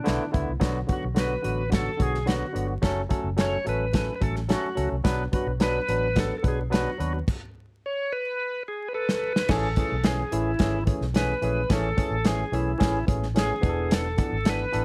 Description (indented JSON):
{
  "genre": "uptempo 1960s-style soul",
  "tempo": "108 BPM",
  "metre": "4/4",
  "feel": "straight",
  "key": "A major",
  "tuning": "A4 = 442 Hz",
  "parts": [
    { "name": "bright tonewheel organ", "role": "melody", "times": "0.0-14.8 s", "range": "D4 to C#5", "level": "-32 LUFS", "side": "equal", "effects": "slow rotary speaker" },
    { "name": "barky tine electric piano", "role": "accompaniment", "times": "0.0-14.8 s", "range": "D3 to B4", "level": "-32 LUFS", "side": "equal", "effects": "overdrive" },
    { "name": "vintage muted fingered electric bass", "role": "bass", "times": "0.1-14.8 s", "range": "E1 to D#2", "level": "-32 LUFS", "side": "equal", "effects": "none" },
    { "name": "natural country drum kit", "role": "drums", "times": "0.1-14.8 s", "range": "crash cymbal, hi-hat, kick drum, snare drum", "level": "-28 LUFS", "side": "equal", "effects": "none" }
  ],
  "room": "light reverb",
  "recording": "vinyl crackle",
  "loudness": "-26 LUFS",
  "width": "mono",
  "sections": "0.6-9.5 A section; 9.5-14.8 B section",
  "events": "stop 7.3-9.5; drum fill 8.4-9.5",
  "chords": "0.0 E7sus4; 0.6 Bm; 2.8 F#m; 5.1 Bm; 7.3 N.C.; 9.5 Amaj7; 13.6 E7sus4"
}